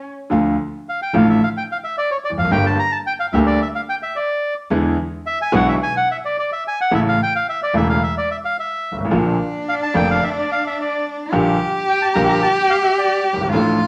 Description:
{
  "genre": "tango",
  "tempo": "109 BPM",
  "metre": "4/4",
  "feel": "rubato",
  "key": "D harmonic minor",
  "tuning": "A4 = 440 Hz",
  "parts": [
    { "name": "warm cello", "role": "second line", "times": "0.0, 9.1-13.9 s", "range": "D4 to G4", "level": "-22 LUFS", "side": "equal", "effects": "none" },
    { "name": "warm grand piano", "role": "accompaniment", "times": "0.3-13.8 s", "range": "E1 to A4", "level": "-20 LUFS", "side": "equal", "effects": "none" },
    { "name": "upright bass", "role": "bass", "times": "0.3-13.8 s", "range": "E1 to E2", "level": "-31 LUFS", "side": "equal", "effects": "none" },
    { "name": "bandoneon", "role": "melody", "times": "0.9-13.2 s", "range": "C#5 to Bb5", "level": "-23 LUFS", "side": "equal", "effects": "none" }
  ],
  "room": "wet studio reverb, RT60 0.9 s",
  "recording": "none",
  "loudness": "-19 LUFS",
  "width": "mono",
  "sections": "0.3-13.9 A section",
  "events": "none",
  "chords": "0.3 Dm; 2.5 Gm; 4.7 E7; 6.9 A; 9.1 Bb; 11.3 Gm/Bb"
}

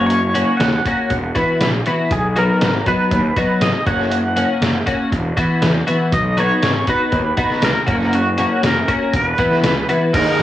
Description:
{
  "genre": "indie rock",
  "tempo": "120 BPM",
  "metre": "4/4",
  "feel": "straight",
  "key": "B major",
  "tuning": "A4 = 439 Hz",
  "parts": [
    { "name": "twangy electric guitar", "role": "melody", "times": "0.0-10.4 s", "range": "F#4 to F#5", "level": "-20 LUFS", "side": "right 1 dB", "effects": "tremolo, cassette tape, tape echo" },
    { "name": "twelve-string electric guitar", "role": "riff", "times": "0.0-10.4 s", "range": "D#3 to F#4", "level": "-18 LUFS", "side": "left 2 dB", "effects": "ensemble chorus, cassette tape" },
    { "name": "fuzz picked electric bass", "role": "bass", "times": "0.0-10.4 s", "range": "E1 to E2", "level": "-21 LUFS", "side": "equal", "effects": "overdrive" },
    { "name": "lo-fi sampler-style drum kit", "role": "drums", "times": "0.1-10.3 s", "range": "crash cymbal, hi-hat, kick drum, snare drum", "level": "-21 LUFS", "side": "equal", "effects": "cassette tape" },
    { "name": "overdriven semi-hollow guitar", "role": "riff", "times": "10.1-10.4 s", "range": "D#3 to G#4", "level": "-18 LUFS", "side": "right 9 dB", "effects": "ensemble chorus, cassette tape" }
  ],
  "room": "light reverb",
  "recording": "home recording on cassette, studio reverb",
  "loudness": "-14 LUFS",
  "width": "side -13 dB against mid",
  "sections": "0.0-10.1 A section",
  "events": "none",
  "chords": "0.0 F#; 1.1 Esus2; 2.1 B; 3.9 F#; 5.1 Esus2; 6.1 B; 7.9 F#; 9.1 Esus2"
}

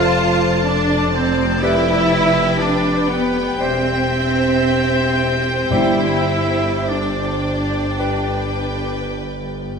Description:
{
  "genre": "classical, slow romantic movement for symphony orchestra",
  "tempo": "51-63 BPM",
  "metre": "4/4",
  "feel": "rubato",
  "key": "unclear",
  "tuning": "A4 = 441 Hz",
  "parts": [
    { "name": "clear symphonic violin section", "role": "melody", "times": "0.0-9.8 s", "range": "G5 to A5", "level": "-28 LUFS", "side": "left 1 dB", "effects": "none" },
    { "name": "clear oboe", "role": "second line", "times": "0.0-9.1 s", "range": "B4 to F5", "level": "-24 LUFS", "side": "right 1 dB", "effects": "none" },
    { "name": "mellow clarinet", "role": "second line", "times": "0.0-8.4 s", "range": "B4 to C5", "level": "-28 LUFS", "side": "left 4 dB", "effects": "none" },
    { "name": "mellow hollow concert flute", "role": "second line", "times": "0.0-8.5 s", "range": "D5 to G5", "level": "-30 LUFS", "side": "left 1 dB", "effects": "none" },
    { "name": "rich symphonic violin section", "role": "second line", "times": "0.0-9.8 s", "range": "B4 to E5", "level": "-26 LUFS", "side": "left 1 dB", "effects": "none" },
    { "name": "clear symphonic viola section", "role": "accompaniment", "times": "0.0-9.1 s", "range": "B3 to F4", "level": "-26 LUFS", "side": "right 1 dB", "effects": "none" },
    { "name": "warm bassoon", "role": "accompaniment", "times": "0.0-8.4 s", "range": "G3", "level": "-28 LUFS", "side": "right 1 dB", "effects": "none" },
    { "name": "mellow French horn section", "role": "sustained chords", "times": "0.0-9.8 s", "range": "G4 to C5", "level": "-24 LUFS", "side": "left 2 dB", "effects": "none" },
    { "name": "clear studio double bass section", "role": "bass", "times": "0.0-9.8 s", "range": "E1 to G1", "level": "-22 LUFS", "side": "equal", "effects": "none" },
    { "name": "rich symphonic cello section", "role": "bass", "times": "0.0-9.1 s", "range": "B3 to F4", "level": "-21 LUFS", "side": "right 1 dB", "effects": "none" },
    { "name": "timpani", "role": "percussion", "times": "5.7-7.4 s", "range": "G2", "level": "-23 LUFS", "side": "equal", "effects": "none" }
  ],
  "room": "wet stone room reverb, RT60 1.3 s",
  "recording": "none",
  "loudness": "-15 LUFS",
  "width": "side -5 dB against mid",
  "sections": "0.0-9.8 A section",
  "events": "none",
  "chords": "0.0 Dm7/F; 1.6 G7/F; 3.6 C/E; 5.7 Gsus4; 8.0 G"
}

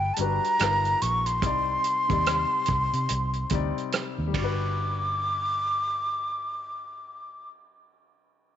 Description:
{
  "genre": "R&B, neo-soul",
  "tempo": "72 BPM",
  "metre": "4/4",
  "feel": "swing 60% on 16ths",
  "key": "G major",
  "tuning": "A4 = 440 Hz",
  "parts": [
    { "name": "breathy concert flute", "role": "melody", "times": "0.0-7.5 s", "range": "G5 to D6", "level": "-26 LUFS", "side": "equal", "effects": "slapback echo" },
    { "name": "warm grand piano", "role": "accompaniment", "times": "0.0-8.6 s", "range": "C3 to D5", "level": "-33 LUFS", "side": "left 11 dB", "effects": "none" },
    { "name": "vintage muted fingered electric bass", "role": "bass", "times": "0.0-7.5 s", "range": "G1 to C3", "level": "-30 LUFS", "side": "right 1 dB", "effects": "none" },
    { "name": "warm soul drum kit", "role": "drums", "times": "0.2-4.6 s", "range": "hi-hat, kick drum, ride cymbal, rim click", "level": "-31 LUFS", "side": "right 5 dB", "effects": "none" }
  ],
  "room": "light reverb",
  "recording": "1960s-style stereo, nothing above 7.9 kHz",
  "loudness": "-24 LUFS",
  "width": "side -10 dB against mid",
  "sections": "0.0-4.8 A section; 4.8-8.1 B section",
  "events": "none",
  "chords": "0.0 Gmaj7; 0.6 G7alt; 1.4 Cmadd9; 4.3 Gmaj7"
}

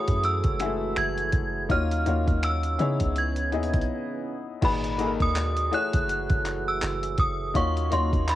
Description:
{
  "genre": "contemporary R&B",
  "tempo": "82 BPM",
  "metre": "4/4",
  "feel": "swing 58% on 16ths",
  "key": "G# minor",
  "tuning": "A4 = 439 Hz",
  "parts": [
    { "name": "synth chime", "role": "melody", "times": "0.0-8.4 s", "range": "B5 to G#6", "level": "-28 LUFS", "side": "right 1 dB", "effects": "ensemble chorus, cassette tape, analog delay" },
    { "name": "clear baby grand piano", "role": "accompaniment", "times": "0.0-8.4 s", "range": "A#2 to E5", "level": "-30 LUFS", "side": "left 7 dB", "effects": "none" },
    { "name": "mellow French horn section", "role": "sustained chords", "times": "0.0-8.4 s", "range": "A#2 to E#5", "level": "-35 LUFS", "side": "right 8 dB", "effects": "none" },
    { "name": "soft 808-style bass", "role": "bass", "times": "0.1-8.4 s", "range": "F#1 to C#3", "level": "-28 LUFS", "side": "right 1 dB", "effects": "none" },
    { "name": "dusty soul sampler-style drum kit", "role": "drums", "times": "0.1-8.4 s", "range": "crash cymbal, finger snaps, handclaps, hi-hat, kick drum", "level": "-27 LUFS", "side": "right 1 dB", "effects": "cassette tape" }
  ],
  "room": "light reverb",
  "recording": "home recording on cassette",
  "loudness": "-23 LUFS",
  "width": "side -14 dB against mid",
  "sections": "0.0-4.6 A section; 4.6-8.4 B section",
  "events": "break 3.9-4.6",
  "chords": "0.0 F#m9; 1.7 D#m9; 2.8 C#m9; 4.6 G#m9; 5.7 F#m9; 7.6 D#m9"
}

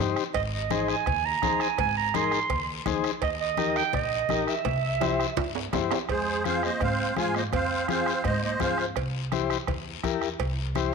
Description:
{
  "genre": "latin, cumbia",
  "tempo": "167 BPM",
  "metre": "4/4",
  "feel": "straight",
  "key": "F harmonic minor from 6.1 s",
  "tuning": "A4 = 440 Hz",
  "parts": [
    { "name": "combo organ", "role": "accompaniment", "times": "0.0-10.9 s", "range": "Eb4 to C5", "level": "-30 LUFS", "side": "left 10 dB", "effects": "none" },
    { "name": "upright bass", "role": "bass", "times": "0.0-10.9 s", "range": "Ab1 to Ab2", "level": "-33 LUFS", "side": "right 1 dB", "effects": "none" },
    { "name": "bombo", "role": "percussion", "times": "0.2-10.9 s", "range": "none", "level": "-35 LUFS", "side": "right 1 dB", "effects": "none" },
    { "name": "guiro", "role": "percussion", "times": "0.2-10.9 s", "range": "none", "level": "-38 LUFS", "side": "left 13 dB", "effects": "none" },
    { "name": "breathy clarinet", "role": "second line", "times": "0.3-8.8 s", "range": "Ab3 to C6", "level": "-29 LUFS", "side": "right 10 dB", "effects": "slapback echo" },
    { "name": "congas", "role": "percussion", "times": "0.3-10.9 s", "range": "none", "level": "-36 LUFS", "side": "left 9 dB", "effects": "none" },
    { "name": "cowbell and timbales", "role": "percussion", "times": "0.3-10.6 s", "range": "none", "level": "-34 LUFS", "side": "right 11 dB", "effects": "none" },
    { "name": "musette accordion", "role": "melody", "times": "6.1-8.9 s", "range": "Ab4 to Ab5", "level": "-28 LUFS", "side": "right 2 dB", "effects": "none" }
  ],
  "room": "wet echo chamber reverb, RT60 1.9 s, small room reverb",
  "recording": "1960s-style stereo with parts hard left and right",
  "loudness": "-24 LUFS",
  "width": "side -5 dB against mid",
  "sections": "0.0-6.1 A section; 6.1-10.9 B section",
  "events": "clarinet solo 0.0-6.1; drum fill 5.0-6.1",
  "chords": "0.3 Ab; 3.2 Eb; 4.7 C; 6.1 Fm; 9.0 C"
}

